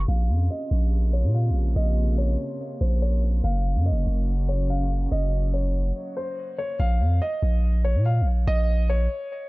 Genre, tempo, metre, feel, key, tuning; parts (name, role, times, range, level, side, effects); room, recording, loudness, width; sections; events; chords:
hip hop, drill; 143 BPM; 4/4; half-time; Bb minor; A4 = 440 Hz
dark concert grand piano; melody; 0.0-9.5 s; C5 to F5; -31 LUFS; left 1 dB; low-pass filter, ping-pong delay
rich studio string section; sustained chords; 0.0-6.8 s; C3 to Gb4; -33 LUFS; equal
long sustained 808-style bass; bass; 0.0-9.1 s; Gb1 to Bb2; -21 LUFS; equal
small room ambience; dark, warm production, low-pass filter; -21 LUFS; side -22 dB against mid
0.1-6.8 A section; 6.8-9.5 B section
filter sweep 0.1-6.8; break 6.0-6.8
0.1 Bbmadd9; 3.4 Gb; 6.8 Bbm